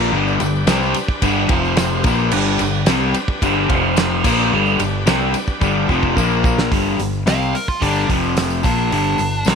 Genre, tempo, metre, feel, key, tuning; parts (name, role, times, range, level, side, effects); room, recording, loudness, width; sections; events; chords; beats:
classic rock; 109 BPM; 4/4; straight; A4 = 440 Hz
bright tonewheel organ; sustained chords; 0.0-6.7 s; Bb3 to C5; -27 LUFS; right 1 dB; slow rotary speaker, overdrive
crunchy overdriven guitar; riff; 0.0-9.6 s; F2 to C4; -20 LUFS; left 12 dB
crunchy overdriven guitar; riff; 0.0-9.6 s; F2 to C4; -22 LUFS; right 14 dB; phaser
growling fingered electric bass; bass; 0.0-9.6 s; F1 to C2; -22 LUFS; right 1 dB; overdrive
tambourine; percussion; 0.0-9.6 s; -36 LUFS; left 15 dB
damped 70s drum kit; drums; 0.4-9.6 s; crash cymbal, hi-hat, kick drum, ride cymbal, snare drum; -20 LUFS; right 1 dB
nasal lead guitar with a parked wah; melody; 7.3-9.6 s; D4 to F5; -23 LUFS; right 2 dB; overdrive
light reverb; 1960s-style stereo with parts hard left and right; -15 LUFS; side -6 dB against mid
0.0-6.7 A section; 6.7-9.6 B section
drum fill 5.6-6.7; lead electric guitar solo 6.7-9.6
0.0 G; 1.5 F5; 2.1 G; 3.7 F5; 4.2 G; 6.2 Bb5; 6.7 G5; 8.1 F5; 8.6 G5
| 0.13 0.68 1.23 1.78 | 2.33 2.88 3.43 3.97 | 4.52 5.07 5.62 6.17 | 6.72 7.27 7.82 8.37 | 8.92 9.47